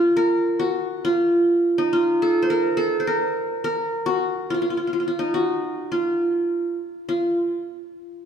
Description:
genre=arabic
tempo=104 BPM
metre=3/4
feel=straight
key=F maqam hijaz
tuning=A4 = 435 Hz
part: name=qanun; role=solo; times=0.0-7.4 s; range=Eb4 to C5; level=-20 LUFS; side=equal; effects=none
room=wet concert hall reverb, RT60 2.0 s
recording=minimal, uncompressed stereo recording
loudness=-20 LUFS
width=side -8 dB against mid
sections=0.0-7.1 A section; 7.1-8.3 B section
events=none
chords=none

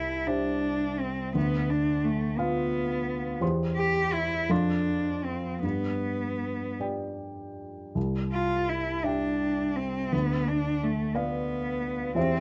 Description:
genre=classical, romantic duo for cello and grand piano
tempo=51-60 BPM (dotted quarters)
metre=6/8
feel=rubato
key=C major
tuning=A4 = 442 Hz
part: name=rich cello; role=melody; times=0.0-12.4 s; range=A3 to G4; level=-31 LUFS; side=equal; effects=none
part: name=warm baby grand piano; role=accompaniment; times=0.0-12.4 s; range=C2 to C6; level=-32 LUFS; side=equal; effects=none
room=light reverb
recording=dark, warm production, nothing above 7.9 kHz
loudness=-28 LUFS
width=mono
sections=0.0-12.4 A section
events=none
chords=0.0 C; 1.4 Bdim/D; 3.4 C/E; 4.5 F; 5.6 G; 8.0 C; 10.1 Bdim/D

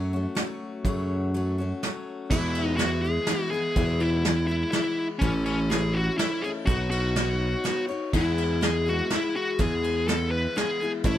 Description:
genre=folk rock and heartland rock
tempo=124 BPM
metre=3/4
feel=straight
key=E major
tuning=A4 = 442 Hz
part: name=picked steel-string acoustic guitar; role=accompaniment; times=0.0-11.2 s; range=E2 to C#5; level=-32 LUFS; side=left 5 dB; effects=none
part: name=modern bright fingered electric bass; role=bass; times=0.0-11.2 s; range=A1 to F#2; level=-27 LUFS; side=right 1 dB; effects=none
part: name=soft brush drum kit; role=drums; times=0.4-11.2 s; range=crash cymbal, hi-hat, kick drum, ride cymbal, snare drum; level=-29 LUFS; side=right 1 dB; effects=none
part: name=dark smooth lead guitar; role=melody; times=2.3-11.2 s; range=C#4 to B4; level=-27 LUFS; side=left 1 dB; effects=overdrive
room=little or no reverb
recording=none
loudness=-23 LUFS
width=side -12 dB against mid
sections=0.0-2.3 A section; 2.3-11.2 B section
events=none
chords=0.0 F#m; 2.3 E; 5.2 A; 6.7 Badd9; 8.1 E

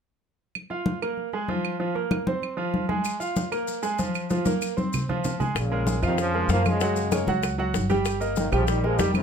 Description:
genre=latin, salsa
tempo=192 BPM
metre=4/4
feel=straight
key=Bb minor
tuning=A4 = 440 Hz
part: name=claves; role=percussion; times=0.6-9.2 s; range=none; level=-34 LUFS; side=right 10 dB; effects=none
part: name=congas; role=percussion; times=0.6-9.2 s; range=none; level=-28 LUFS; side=left 2 dB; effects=none
part: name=bright baby grand piano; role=accompaniment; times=0.7-9.2 s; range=F3 to G5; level=-27 LUFS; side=right 2 dB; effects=none
part: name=maracas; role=percussion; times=3.0-9.2 s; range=none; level=-38 LUFS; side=left 7 dB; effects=none
part: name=bright trombone section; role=melody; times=5.6-9.2 s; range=A2 to Bb3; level=-27 LUFS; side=left 1 dB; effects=plate reverb
part: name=upright bass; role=bass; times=5.6-9.2 s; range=F1 to Gb2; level=-26 LUFS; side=equal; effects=none
part: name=bongos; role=percussion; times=5.6-9.2 s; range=none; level=-33 LUFS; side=left 10 dB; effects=none
room=moderate studio reverb, RT60 0.5 s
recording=none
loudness=-23 LUFS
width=side -7 dB against mid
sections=0.5-5.6 A section; 5.6-9.2 B section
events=drum fill 4.3-5.6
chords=0.5 Bb5; 1.8 Fsus4; 3.1 Bb5; 4.3 Fsus4; 5.6 Bbm7; 6.8 Gbadd9; 8.1 Eb/G

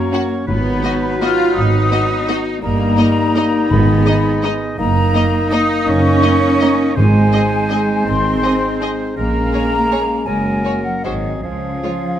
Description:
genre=classical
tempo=142-183 BPM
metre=3/4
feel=rubato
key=unclear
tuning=A4 = 441 Hz
part: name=clear oboe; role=second line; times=0.0-12.2 s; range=Ab4 to D#5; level=-27 LUFS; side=equal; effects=none
part: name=hollow flute section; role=second line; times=0.0-12.2 s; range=Eb5 to E#6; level=-22 LUFS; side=left 2 dB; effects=none
part: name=warm clarinet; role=second line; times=0.0-12.2 s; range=C4 to F4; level=-27 LUFS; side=right 1 dB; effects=none
part: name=mellow bassoon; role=accompaniment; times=0.0-12.2 s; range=F3 to Bb3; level=-25 LUFS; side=right 1 dB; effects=none
part: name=dark French horn section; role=sustained chords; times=0.0-12.2 s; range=F3 to F#4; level=-22 LUFS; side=left 5 dB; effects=none
part: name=rich studio cello section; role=bass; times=0.0-12.2 s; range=Eb3 to E#4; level=-20 LUFS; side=right 2 dB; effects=none
part: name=rich studio violin section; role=melody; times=0.1-11.9 s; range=C5 to F#5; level=-28 LUFS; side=left 3 dB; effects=none
part: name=warm studio violin section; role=second line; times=0.1-11.9 s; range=D#4 to Ab4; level=-28 LUFS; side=left 2 dB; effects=none
part: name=warm studio viola section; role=accompaniment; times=0.1-11.9 s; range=G#3 to C#4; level=-25 LUFS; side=right 1 dB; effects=none
part: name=warm studio double bass section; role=bass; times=0.5-11.8 s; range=Gb1 to Db2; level=-20 LUFS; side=right 2 dB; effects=none
part: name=timpani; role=percussion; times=0.5-1.0, 3.7-4.2, 7.0-7.5 s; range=G#2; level=-20 LUFS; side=left 2 dB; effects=none
room=light reverb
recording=none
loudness=-13 LUFS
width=side -10 dB against mid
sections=0.0-12.2 A section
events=none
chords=0.5 G#m7; 2.6 D#/G; 3.7 G#m; 4.8 Ebm7/Gb; 7.0 Ab; 9.2 Bbm7; 10.3 Gb; 11.0 Ab7; 11.4 Db

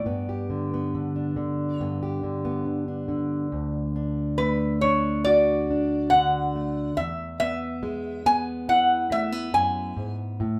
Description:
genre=acoustic folk duo or small band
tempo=70 BPM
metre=4/4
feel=straight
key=D major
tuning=A4 = 440 Hz
part: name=lap resonator guitar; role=melody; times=0.0-10.1 s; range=B4 to G#5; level=-25 LUFS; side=equal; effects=none
part: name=fingerpicked plugged-in steel-string acoustic guitar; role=accompaniment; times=0.0-10.6 s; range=D2 to G4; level=-29 LUFS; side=equal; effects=none
room=wet small room ambience, RT60 0.5 s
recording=heard from further back in the room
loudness=-25 LUFS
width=mono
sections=0.0-3.5 A section; 3.5-10.6 B section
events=none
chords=0.1 G; 3.5 D; 7.0 E

